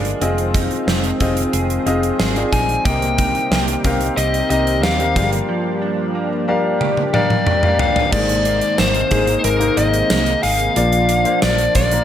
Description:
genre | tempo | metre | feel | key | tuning
1980s-style pop | 91 BPM | 4/4 | straight | unclear | A4 = 443 Hz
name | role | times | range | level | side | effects
warm concert grand piano | accompaniment | 0.0-12.0 s | G2 to F5 | -21 LUFS | left 3 dB | none
lush unison pad | sustained chords | 0.0-12.0 s | C3 to G4 | -26 LUFS | equal | chorus
direct-recorded clean electric guitar | riff | 0.0-12.0 s | Eb3 to Ab4 | -26 LUFS | right 5 dB | analog chorus, tape echo
vintage muted fingered electric bass | bass | 0.0-12.0 s | F1 to Eb2 | -22 LUFS | equal | none
gated 80s drum kit | drums | 0.0-12.0 s | crash cymbal, hi-hat, kick drum, snare drum, tambourine, toms | -20 LUFS | right 1 dB | none
biting lead guitar | melody | 2.5-12.0 s | Bb4 to Ab5 | -19 LUFS | left 2 dB | overdrive, tape echo
room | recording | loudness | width
light reverb, small room reverb | none | -15 LUFS | side -10 dB against mid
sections
0.0-8.1 A section; 8.1-12.0 B section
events
drum fill 6.8-8.1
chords
0.2 Fm7; 2.9 Cm7; 5.2 Gm7; 8.1 Abadd9; 10.8 Bb

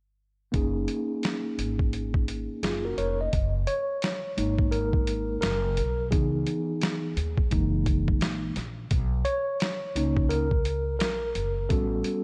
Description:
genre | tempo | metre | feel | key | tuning
hip hop, jazz-hop | 86 BPM | 4/4 | swing 63% on 16ths | F# major | A4 = 440 Hz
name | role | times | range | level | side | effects
mellow tine electric piano | accompaniment | 0.5-12.2 s | E3 to D#5 | -31 LUFS | equal | none
upright bass | bass | 0.5-12.0 s | E#1 to D#2 | -32 LUFS | equal | none
boom bap sampler-style drum kit | drums | 0.5-12.2 s | hi-hat, kick drum, snare drum | -30 LUFS | equal | vintage 12-bit sampler grit
room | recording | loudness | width
light reverb | none | -27 LUFS | mono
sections
0.5-3.3 A section; 3.3-12.2 B section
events
tine electric piano solo 3.3-12.2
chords
0.5 F#69; 6.1 C#m9; 7.5 F#13; 8.9 Bmaj9 (rootless); 11.7 A13

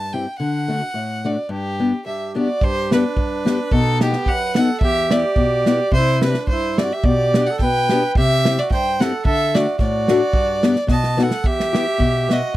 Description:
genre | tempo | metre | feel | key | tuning
alpine folk, alpine dance band | 108 BPM | 2/4 | swing 55% on 8ths, rubato | G major | A4 = 440 Hz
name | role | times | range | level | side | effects
clear fiddle | melody | 0.0-12.6 s | G4 to A5 | -21 LUFS | right 1 dB | none
picked acoustic archtop guitar | accompaniment | 0.0-12.6 s | E2 to G4 | -20 LUFS | left 3 dB | none
warm trumpet | second line | 2.1-12.6 s | B3 to D#5 | -25 LUFS | right 5 dB | none
natural country drum kit | drums | 2.6-12.6 s | kick drum, snare drum | -20 LUFS | right 1 dB | none
room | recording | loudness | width
little or no reverb | dry, close 1970s-style studio recording | -16 LUFS | side -15 dB against mid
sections
0.0-2.6 A section; 2.6-11.4 A section; 11.4-12.6 B section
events
drum fill 10.9-11.4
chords
0.4 D; 1.5 G; 3.7 B; 4.8 Em; 5.9 C; 7.0 G/B; 8.2 C; 9.2 D; 10.3 G; 10.9 B7; 11.4 Em

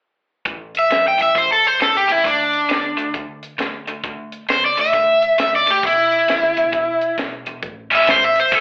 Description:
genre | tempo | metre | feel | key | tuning
electric blues shuffle | 134 BPM | 4/4 | swing 64% on 8ths | unclear | A4 = 440 Hz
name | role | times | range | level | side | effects
cranked stack guitar | riff | 0.5-8.6 s | E2 to E4 | -24 LUFS | equal | overdrive, slapback echo
compact cocktail drum kit | drums | 0.5-8.6 s | hi-hat, kick drum, snare drum | -25 LUFS | equal | none
crunchy overdriven guitar | melody | 0.8-8.6 s | D4 to G5 | -14 LUFS | equal | plate reverb
vintage muted fingered electric bass | bass | 7.6-8.6 s | A1 to C#2 | -39 LUFS | equal | none
room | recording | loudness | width
moderate club reverb, RT60 0.7 s | live gig heard through the venue's PA, club reverb, telephone sound | -14 LUFS | side -40 dB against mid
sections
0.5-7.6 A section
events
none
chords
0.5 A5; 2.2 D5; 5.8 E5; 7.6 A7

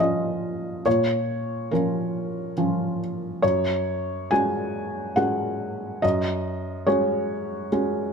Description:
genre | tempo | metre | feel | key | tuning
neoclassical minimalist piano | 70 BPM | 3/4 | rubato | unclear | A4 = 440 Hz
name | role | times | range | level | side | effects
felt-muted upright piano | solo | 0.0-8.1 s | Gb2 to Ab5 | -22 LUFS | equal | none
room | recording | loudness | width
moderate stone room reverb, RT60 1.2 s | close, detailed microphones | -23 LUFS | side -5 dB against mid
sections
0.0-8.1 A section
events
none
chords
0.0 Bbm; 3.4 Gbsus2

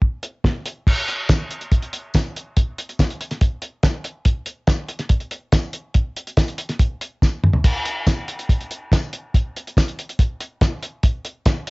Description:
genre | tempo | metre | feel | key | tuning
rock | 142 BPM | 4/4 | straight | none | none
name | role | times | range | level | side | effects
cloth-damped thuddy drum kit | drums | 0.0-11.7 s | crash cymbal, hi-hat, kick drum, snare drum, toms | -18 LUFS | equal | cassette tape
tambourine | percussion | 1.3-11.6 s | none | -35 LUFS | left 5 dB | none
room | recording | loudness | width
light reverb | home recording on cassette, nothing above 7.8 kHz | -19 LUFS | side -28 dB against mid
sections
0.9-11.7 A section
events
drum fill 7.2-7.7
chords
none

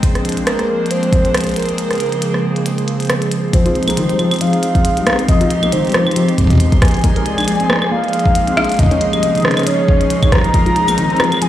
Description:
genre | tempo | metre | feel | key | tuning
IDM | 137 BPM | 4/4 | swing 56% on 16ths | F minor | A4 = 439 Hz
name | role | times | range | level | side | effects
hollow soft pad | sustained chords | 0.0-11.5 s | Db3 to D5 | -18 LUFS | right 1 dB | chorus
electronic kick drum | drums | 0.0-10.6 s | none | -13 LUFS | equal | none
glitchy drum kit | drums | 0.0-11.5 s | cabasa, claves, hi-hat, rim click | -20 LUFS | equal | digital delay
bubbling stepped-filter texture | texture | 0.0-11.5 s | C4 to C6 | -29 LUFS | left 2 dB | chorus, built-in reverb
warbly nostalgic lead | melody | 0.5-11.5 s | Bb4 to Bb5 | -19 LUFS | equal | chorus, digital delay
felt-muted upright piano | arpeggios | 3.5-11.5 s | C3 to Bb4 | -20 LUFS | left 3 dB | digital delay
room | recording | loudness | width
light reverb | played on a big sound system in a bare room, large studio reverb | -12 LUFS | side -12 dB against mid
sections
0.0-3.5 A section; 3.5-11.5 B section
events
break 1.8-3.5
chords
0.0 Bb7; 1.8 Db6; 3.5 Fm7; 7.0 Bb7; 8.8 Db6; 10.5 Fm7

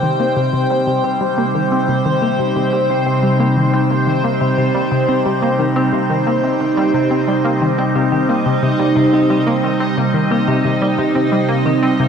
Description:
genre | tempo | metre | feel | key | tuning
ambient | 89 BPM | 4/4 | straight | C minor | A4 = 440 Hz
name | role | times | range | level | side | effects
evolving wavetable pad | sustained chords | 0.0-12.1 s | C3 to G5 | -16 LUFS | right 1 dB | phaser, built-in reverb
analog pluck | riff | 0.0-12.1 s | C3 to C4 | -19 LUFS | left 1 dB | chorus, ping-pong delay
bubbling stepped-filter texture | texture | 0.0-12.1 s | C4 to Eb5 | -24 LUFS | left 1 dB | chorus, built-in reverb
vibraphone with medium mallets | arpeggios | 0.2-12.1 s | C4 to C5 | -26 LUFS | equal | auto-pan, ping-pong delay
room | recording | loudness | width
wet huge ambient reverb, RT60 7.9 s | none | -13 LUFS | side -7 dB against mid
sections
0.0-12.1 A section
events
fade-in on vibraphone 0.0-12.1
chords
0.0 Cm

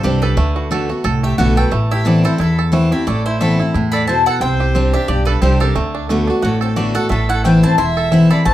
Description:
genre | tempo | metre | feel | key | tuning
bluegrass | 178 BPM | 4/4 | swing 55% on 8ths | A dorian | A4 = 440 Hz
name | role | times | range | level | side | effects
bluegrass banjo | melody | 0.0-8.5 s | A3 to A4 | -23 LUFS | right 6 dB | plate reverb
mandolin | melody | 0.0-8.5 s | A4 to C6 | -21 LUFS | left 2 dB | plate reverb
picked steel-string acoustic guitar | accompaniment | 0.0-8.5 s | E2 to G4 | -16 LUFS | left 1 dB | none
upright bass | bass | 0.0-8.5 s | E1 to E2 | -19 LUFS | right 1 dB | none
rich fiddle | second line | 1.2-8.5 s | C4 to E5 | -25 LUFS | equal | none
room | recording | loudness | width
moderate studio ambience, RT60 0.5 s | none | -13 LUFS | side -13 dB against mid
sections
0.0-8.5 A section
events
none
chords
0.4 D6; 1.7 Amadd9; 4.4 Csus2; 5.8 D6; 7.1 Amadd9

